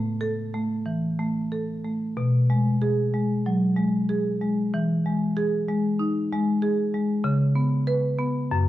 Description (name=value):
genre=classical, contemporary piece for solo marimba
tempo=94 BPM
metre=4/4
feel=rubato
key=B major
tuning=A4 = 440 Hz
part: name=marimba with medium hard mallets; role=solo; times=0.0-8.7 s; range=F#2 to B4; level=-22 LUFS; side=equal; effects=none
room=wet recital hall reverb, RT60 1.3 s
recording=dark, warm production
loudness=-22 LUFS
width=side -14 dB against mid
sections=0.0-8.7 A section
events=none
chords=0.0 A5; 2.2 B5; 4.7 Emaj7; 7.2 Bsus2/C#